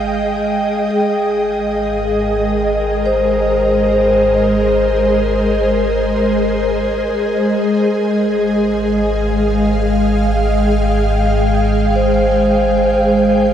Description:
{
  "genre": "ambient",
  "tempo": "free time",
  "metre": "none",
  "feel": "none",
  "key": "unclear",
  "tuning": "A4 = 440 Hz",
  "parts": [
    { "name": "ethereal airy pad", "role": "sustained chords", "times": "0.0-13.5 s", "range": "Ab3 to G5", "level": "-15 LUFS", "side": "equal", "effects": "ensemble chorus, built-in reverb" },
    { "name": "deep rumbling drone", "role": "bass", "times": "0.0-13.5 s", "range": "Ab1", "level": "-21 LUFS", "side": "equal", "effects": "built-in reverb, tube saturation" },
    { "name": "vibraphone with soft mallets", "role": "arpeggios", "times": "0.9-13.5 s", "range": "Ab4 to Eb5", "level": "-18 LUFS", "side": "left 1 dB", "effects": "diffuse ambient delay" }
  ],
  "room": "wet huge ambient reverb, RT60 7.5 s",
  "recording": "in a vast, echoing space",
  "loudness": "-13 LUFS",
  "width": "side -9 dB against mid",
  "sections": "0.0-13.5 A section",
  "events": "none",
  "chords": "0.0 Ebadd9/Ab"
}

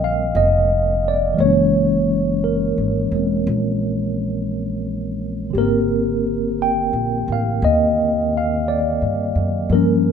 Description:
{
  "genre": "jazz ballad",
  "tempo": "58 BPM",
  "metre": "4/4",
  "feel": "swing 69% on 8ths",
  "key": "unclear",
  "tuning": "A4 = 440 Hz",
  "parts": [
    { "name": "tine electric piano", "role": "accompaniment", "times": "0.0-10.1 s", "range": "D3 to G5", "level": "-18 LUFS", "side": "equal", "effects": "medium stereo tremolo" },
    { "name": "upright bass", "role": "bass", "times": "0.0-10.1 s", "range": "Fb1 to G2", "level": "-23 LUFS", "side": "equal", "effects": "none" }
  ],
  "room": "light reverb",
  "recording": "minimal, uncompressed stereo recording, faint mains hum",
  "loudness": "-17 LUFS",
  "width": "side -7 dB against mid",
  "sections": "0.0-10.1 A section",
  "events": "none",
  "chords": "0.0 Ebmaj9; 1.4 Gb9; 5.6 Abmaj9#11"
}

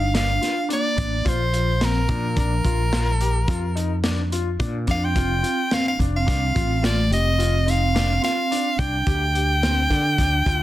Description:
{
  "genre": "progressive instrumental, band music in an uneven meter",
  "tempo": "108 BPM",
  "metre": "7/4",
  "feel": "straight",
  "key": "unclear",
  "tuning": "A4 = 440 Hz",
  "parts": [
    { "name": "bright soprano saxophone", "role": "melody", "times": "0.0-10.6 s", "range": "Bb4 to G5", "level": "-24 LUFS", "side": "equal", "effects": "none" },
    { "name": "vibraphone with soft mallets", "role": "second line", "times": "0.0-10.6 s", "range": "F3 to D4", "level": "-29 LUFS", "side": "right 3 dB", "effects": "none" },
    { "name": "fretless electric bass", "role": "bass", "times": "0.0-10.6 s", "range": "F1 to D3", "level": "-22 LUFS", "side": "equal", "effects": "none" },
    { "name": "dark baby grand piano", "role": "arpeggios", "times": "0.1-10.6 s", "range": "C4 to G4", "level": "-30 LUFS", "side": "left 6 dB", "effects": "tape echo" },
    { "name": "crunchy breakbeat drum kit", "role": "drums", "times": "0.1-10.6 s", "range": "hi-hat, kick drum, snare drum", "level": "-25 LUFS", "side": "equal", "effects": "none" }
  ],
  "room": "light reverb, small room ambience",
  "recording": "dense, heavily limited modern master",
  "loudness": "-19 LUFS",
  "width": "side -14 dB against mid",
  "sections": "0.0-10.6 A section",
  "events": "none",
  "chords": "0.0 Gm7; 1.3 Bb; 5.2 F; 9.1 Dsus4"
}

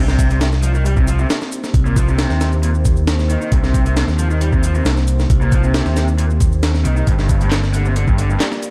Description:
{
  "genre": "breakbeat, breaks",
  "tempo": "135 BPM",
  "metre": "4/4",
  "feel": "straight",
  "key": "C minor",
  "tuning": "A4 = 440 Hz",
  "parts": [
    { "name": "deep dark ambient pad", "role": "sustained chords", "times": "0.0-8.7 s", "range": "Bb3 to D5", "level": "-29 LUFS", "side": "equal", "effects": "chorus, built-in reverb, sidechain pumping" },
    { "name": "overdriven picked electric bass", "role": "bass", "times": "0.0-8.3 s", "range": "G1 to Eb2", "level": "-18 LUFS", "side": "equal", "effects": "tube saturation" },
    { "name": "raw garage guitar", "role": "riff", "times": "0.1-8.5 s", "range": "G2 to G3", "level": "-26 LUFS", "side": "equal", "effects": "overdrive, tape echo" },
    { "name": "breakbeat sampler-style drum kit", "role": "drums", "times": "0.1-8.7 s", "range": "hi-hat, kick drum, snare drum", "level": "-20 LUFS", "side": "equal", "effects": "small room reverb" },
    { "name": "electronic shaker and handclaps", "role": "drums", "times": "0.1-8.7 s", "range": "none", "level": "-35 LUFS", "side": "equal", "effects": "small room reverb" }
  ],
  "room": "digital ambience",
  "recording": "dark, warm production",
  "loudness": "-16 LUFS",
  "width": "mono",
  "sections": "0.0-8.7 A section",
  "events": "none",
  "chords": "0.0 Cm7; 7.1 Gm7"
}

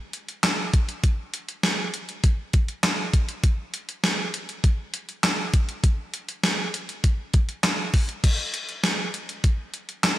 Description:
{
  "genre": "pop",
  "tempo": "100 BPM",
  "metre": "4/4",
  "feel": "straight",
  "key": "none",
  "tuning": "none",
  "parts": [
    { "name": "gated 80s digital drum machine", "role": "drums", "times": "0.1-10.2 s", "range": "crash cymbal, handclaps, hi-hat, kick drum, snare drum", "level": "-22 LUFS", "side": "equal", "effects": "gated reverb, gated reverb snare" }
  ],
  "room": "little or no reverb",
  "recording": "dry, gritty hardware recording",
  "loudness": "-22 LUFS",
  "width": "side -15 dB against mid",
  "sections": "0.0-8.2 A section; 8.2-10.2 A section",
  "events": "none",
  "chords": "none"
}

